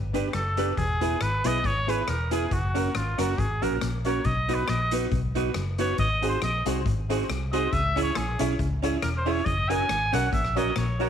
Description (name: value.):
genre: ska.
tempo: 138 BPM.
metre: 4/4.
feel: swing 54% on 8ths.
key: unclear.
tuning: A4 = 444 Hz.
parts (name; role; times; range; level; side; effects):
clean electric guitar; riff; 0.0-10.9 s; E2 to C#3; -36 LUFS; left 8 dB; none.
vintage muted fingered electric bass; bass; 0.0-11.1 s; E1 to C#2; -29 LUFS; equal; none.
archtop guitar, miked and amplified; accompaniment; 0.1-11.1 s; B#3 to B4; -30 LUFS; right 12 dB; slapback echo.
honky-tonk upright piano; stabs; 0.1-11.1 s; A#3 to C#5; -33 LUFS; left 12 dB; none.
street-band drum kit; drums; 0.1-11.1 s; hi-hat, kick drum, rim click; -33 LUFS; left 2 dB; none.
clear trumpet; melody; 0.3-11.1 s; E#4 to G#5; -28 LUFS; equal; slapback echo.
room: light reverb, small room reverb.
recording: 1960s-style stereo with parts hard left and right.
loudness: -23 LUFS.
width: side -8 dB against mid.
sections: 0.0-11.1 A section.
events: trumpet solo 0.0-11.1.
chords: 0.0 G; 0.8 E; 2.5 F#; 4.3 B; 6.0 G#7; 7.7 C#m; 9.5 F#.